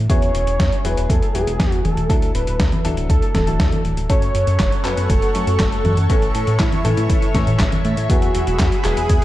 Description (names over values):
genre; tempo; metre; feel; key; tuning
italo disco; 120 BPM; 4/4; straight; unclear; A4 = 440 Hz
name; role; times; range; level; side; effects
chorused synth bass; bass; 0.0-9.2 s; D1 to A2; -20 LUFS; equal; none
wide unison lead; melody; 0.1-9.2 s; E4 to C#5; -23 LUFS; right 1 dB; cassette tape, tape echo
bright grand piano; stabs; 0.1-9.2 s; A2 to A4; -27 LUFS; left 4 dB; vintage 12-bit sampler grit
dusty soul sampler-style drum kit; drums; 0.1-9.2 s; congas, handclaps, hi-hat, snare drum; -24 LUFS; equal; overdrive
electronic kick drum; drums; 0.1-9.2 s; none; -19 LUFS; equal; none
lush unison pad; sustained chords; 4.4-9.2 s; G#4 to C#6; -27 LUFS; equal; chorus, phaser
room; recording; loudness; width
light reverb, digital ambience; dark, warm production; -15 LUFS; side -15 dB against mid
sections
0.0-9.2 A section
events
none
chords
0.1 Eadd9; 2.1 Dadd9; 4.1 F#m; 6.1 A; 8.1 Eadd9